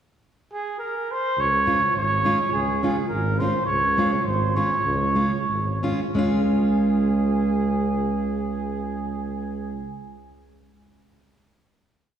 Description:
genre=alpine folk, alpine dance band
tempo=82-105 BPM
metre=2/4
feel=straight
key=Db major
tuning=A4 = 439 Hz
part: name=mellow trumpet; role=melody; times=0.5-9.9 s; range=Ab4 to Db5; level=-24 LUFS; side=right 2 dB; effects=none
part: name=mellow tuba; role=bass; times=1.4-9.9 s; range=Ab1 to Db2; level=-26 LUFS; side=right 2 dB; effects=none
part: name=fingerpicked plugged-in steel-string acoustic guitar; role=accompaniment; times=1.7-10.2 s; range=Ab3 to F4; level=-25 LUFS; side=right 1 dB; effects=none
room=wet concert hall reverb, RT60 2.1 s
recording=recorded in a church or concert hall, studio reverb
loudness=-20 LUFS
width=side -9 dB against mid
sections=0.2-1.4 pickup bar; 1.4-6.2 A section; 6.2-9.1 final chord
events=slowing down 3.7-6.2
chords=0.2 N.C.; 1.4 Db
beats=| 0.24 0.81 | 1.39 1.96 | 2.53 3.10 | 3.68 4.25 | 4.85 5.50 | 6.19 6.92 | 7.65 8.38

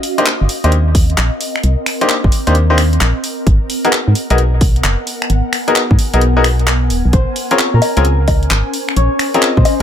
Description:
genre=UK garage, two-step garage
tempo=131 BPM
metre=4/4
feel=swing 66% on 16ths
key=C phrygian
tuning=A4 = 440 Hz
part: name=house drum kit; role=drums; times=0.0-9.8 s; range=bongos, finger snaps, handclaps, hi-hat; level=-18 LUFS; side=left 1 dB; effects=none
part: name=ethereal airy pad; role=texture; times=0.0-9.8 s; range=Cb4 to Ab5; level=-22 LUFS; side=equal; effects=ensemble chorus, built-in reverb, phaser, sidechain pumping
part: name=bright grand piano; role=stabs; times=0.2-9.5 s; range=Bb3 to C5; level=-16 LUFS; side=left 2 dB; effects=dub echo
part: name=organ-like FM bass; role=bass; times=0.4-9.8 s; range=Eb1 to Bb2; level=-13 LUFS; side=equal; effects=none
part: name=electronic kick drum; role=drums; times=0.9-9.6 s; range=none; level=-13 LUFS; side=equal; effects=none
part: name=concert harp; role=melody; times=7.1-9.8 s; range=Bb4 to Eb5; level=-20 LUFS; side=left 2 dB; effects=none
room=digital ambience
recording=none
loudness=-11 LUFS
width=side -9 dB against mid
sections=0.0-9.8 A section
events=none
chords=0.0 Cm7; 3.5 Abm9; 7.1 Bbm9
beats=0.26 0.72 1.18 | 1.64 2.09 2.55 3.01 | 3.47 3.93 4.38 4.84 | 5.30 5.76 6.22 6.67 | 7.13 7.59 8.05 8.51 | 8.96 9.42

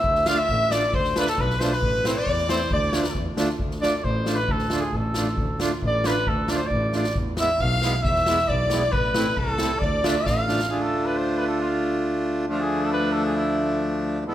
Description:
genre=klezmer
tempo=135 BPM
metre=2/4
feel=straight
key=D dorian sharp4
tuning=A4 = 439 Hz
part: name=clear cornet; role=melody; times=0.0-14.3 s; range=E4 to F5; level=-25 LUFS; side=equal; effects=none
part: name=rich double bass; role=bass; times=0.0-14.3 s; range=A1 to E2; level=-28 LUFS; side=equal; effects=none
part: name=street-band drum kit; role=drums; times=0.0-10.7 s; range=kick drum, snare drum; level=-28 LUFS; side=equal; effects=none
part: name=clear violin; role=second line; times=0.3-3.1, 7.4-10.7 s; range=A4 to F5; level=-29 LUFS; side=left 2 dB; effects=none
part: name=accordion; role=accompaniment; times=0.3-14.3 s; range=F3 to F4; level=-26 LUFS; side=right 1 dB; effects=none
room=moderate recital hall reverb, RT60 1.8 s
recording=none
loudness=-20 LUFS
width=side -12 dB against mid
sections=0.0-3.6 A section; 3.6-10.7 B section; 10.7-14.3 C section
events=cornet solo 3.6-10.7; drum fill 6.9, 10.3-10.7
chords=0.1 Dm; 1.8 Am; 2.7 Dm; 7.2 E; 8.9 Am; 9.8 Dm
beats=| 0.05 0.49 | 0.94 1.38 | 1.83 2.27 | 2.71 3.16 | 3.60 4.05 | 4.50 4.94 | 5.38 5.83 | 6.28 6.72 | 7.16 7.61 | 8.05 8.50 | 8.94 9.38 | 9.83 10.27 | 10.72 11.16 | 11.61 12.05 | 12.50 12.94 | 13.39 13.83 | 14.28

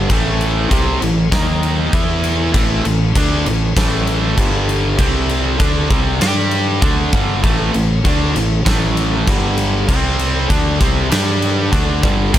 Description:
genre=hard rock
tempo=98 BPM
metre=4/4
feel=straight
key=unclear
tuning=A4 = 440 Hz
part: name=high-gain distorted guitar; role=riff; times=0.0-12.4 s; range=G2 to G4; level=-18 LUFS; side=right 1 dB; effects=distortion
part: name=fuzz fingered electric bass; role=bass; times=0.0-12.4 s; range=G1 to G2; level=-19 LUFS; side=equal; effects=overdrive
part: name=huge arena drum kit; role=drums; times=0.1-12.4 s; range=crash cymbal, kick drum, snare drum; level=-18 LUFS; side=equal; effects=none
room=small room ambience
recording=none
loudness=-13 LUFS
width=side -12 dB against mid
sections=0.0-12.3 A section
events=none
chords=0.1 A5; 1.3 D#5; 1.9 E5; 2.5 A5; 4.4 G5; 5.0 C5; 5.6 Csus2; 6.2 G5; 6.8 A5; 9.3 G5; 9.9 C5; 10.5 Csus2; 11.1 G5; 11.7 Gsus2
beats=| 0.10 0.71 1.33 1.94 | 2.55 3.16 3.77 4.38 | 4.99 5.61 6.22 6.83 | 7.44 8.05 8.66 9.28 | 9.89 10.50 11.11 11.73 | 12.34

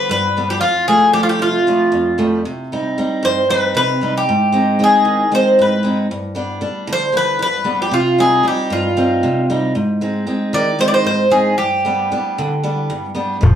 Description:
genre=greek folk, Greek bouzouki band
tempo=230 BPM (eighths)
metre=7/8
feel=straight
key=G phrygian dominant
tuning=A4 = 440 Hz
part: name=Greek bouzouki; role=melody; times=0.0-13.1 s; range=F4 to D5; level=-15 LUFS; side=equal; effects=none
part: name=picked steel-string acoustic guitar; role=accompaniment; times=0.0-13.6 s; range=F2 to Eb4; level=-18 LUFS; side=right 1 dB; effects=none
part: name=upright bass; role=bass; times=13.4-13.6 s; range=F1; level=-13 LUFS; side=equal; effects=none
part: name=darbuka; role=percussion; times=13.4-13.5 s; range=none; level=-10 LUFS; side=left 1 dB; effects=none
room=wet studio reverb, RT60 0.5 s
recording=heard from further back in the room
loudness=-14 LUFS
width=side -9 dB against mid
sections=0.0-13.4 A section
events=none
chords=0.0 G; 0.6 Fadd9; 2.5 Cm; 4.3 Ab; 6.1 G; 7.9 Cm; 9.8 Ab; 11.6 G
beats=0.12 0.38 | 0.64 0.90 1.16 1.43 1.69 1.95 2.21 | 2.47 2.73 2.99 3.25 3.51 3.77 4.03 | 4.29 4.55 4.82 5.08 5.34 5.60 5.86 | 6.12 6.38 6.64 6.90 7.16 7.42 7.68 | 7.95 8.21 8.47 8.73 8.99 9.25 9.51 | 9.77 10.03 10.29 10.55 10.81 11.07 11.34 | 11.60 11.86 12.12 12.38 12.64 12.90 13.16 | 13.42

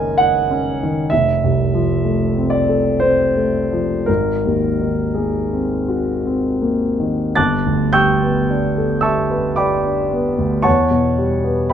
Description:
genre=classical, impressionist solo piano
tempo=52-66 BPM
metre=3/4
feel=rubato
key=unclear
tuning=A4 = 438 Hz
part: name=warm concert grand piano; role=solo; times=0.0-11.7 s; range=F1 to A6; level=-15 LUFS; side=equal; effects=none
room=light reverb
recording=dark, warm production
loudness=-15 LUFS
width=side -9 dB against mid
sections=0.0-7.4 A section; 7.4-11.7 B section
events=none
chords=0.0 D#m7/F#; 1.1 Fmaj7; 4.1 Ab9; 7.4 Gadd9; 10.7 Emadd9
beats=0.20 | 1.11 2.04 3.02 | 4.08 5.16 6.25 | 7.38 8.51 9.59 | 10.66 11.71

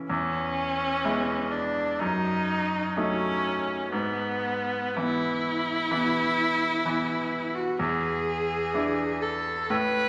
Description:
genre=classical, romantic duo for viola and grand piano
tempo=63 BPM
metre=4/4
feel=rubato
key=unclear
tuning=A4 = 440 Hz
part: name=bright grand piano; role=accompaniment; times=0.0-10.1 s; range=E2 to E4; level=-31 LUFS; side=equal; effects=none
part: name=clear viola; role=melody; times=0.1-10.1 s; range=B3 to B4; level=-30 LUFS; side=equal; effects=none
room=wet recital hall reverb, RT60 1.4 s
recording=vinyl crackle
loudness=-27 LUFS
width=mono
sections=0.0-10.1 A section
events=none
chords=0.1 E; 2.0 D#dim/F#; 3.9 E/G#; 7.8 E7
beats=| 0.09 1.04 2.00 2.97 | 3.92 4.96 5.91 6.86 | 7.79 8.74 9.70

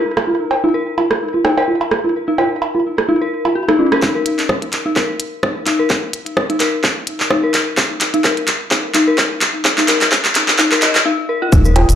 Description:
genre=minimal techno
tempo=128 BPM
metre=4/4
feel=swing 56% on 16ths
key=unclear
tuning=A4 = 441 Hz
part: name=bubbling stepped-filter texture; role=texture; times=0.0-4.0, 11.8-12.0 s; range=Bb4 to Eb5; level=-29 LUFS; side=equal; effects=chorus, built-in reverb, sidechain pumping
part: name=electronic rim click, cowbell and congas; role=percussion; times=0.2-4.0, 11.8-11.9 s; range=none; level=-15 LUFS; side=right 2 dB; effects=digital delay
part: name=dark detuned synth bell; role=riff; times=0.6-11.7 s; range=Db4 to Eb5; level=-18 LUFS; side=left 2 dB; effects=chorus, sidechain pumping, low-pass filter, digital delay
part: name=electronic kick drum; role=drums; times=4.0-11.6 s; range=none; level=-19 LUFS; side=equal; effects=high-pass filter on kick, high-pass filter on room
part: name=minimal click drum kit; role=drums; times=4.0-12.0 s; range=handclaps, hi-hat, rim click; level=-16 LUFS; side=equal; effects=none
part: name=round analog bass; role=bass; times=11.5-12.0 s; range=Eb1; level=-12 LUFS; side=equal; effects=sidechain pumping
part: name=cabasa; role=percussion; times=11.5-12.0 s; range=none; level=-27 LUFS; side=right 1 dB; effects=none
room=wet small room reverb, RT60 0.5 s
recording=played on a big sound system in a bare room, large studio reverb, high-pass filter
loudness=-13 LUFS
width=side -9 dB against mid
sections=0.0-4.0 A section; 4.0-11.5 B section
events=build-up 4.0-11.5; drum fill 4.0-11.1; filter sweep on synth bell 4.0-11.5; filter sweep 4.0-11.5; break 11.1-11.5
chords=0.0 N.C.; 4.0 Eb5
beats=| 0.27 0.74 1.21 1.68 | 2.15 2.62 3.09 3.56 | 4.02 4.49 4.96 5.43 | 5.90 6.37 6.84 7.30 | 7.77 8.24 8.71 9.18 | 9.65 10.12 10.59 11.05 | 11.52

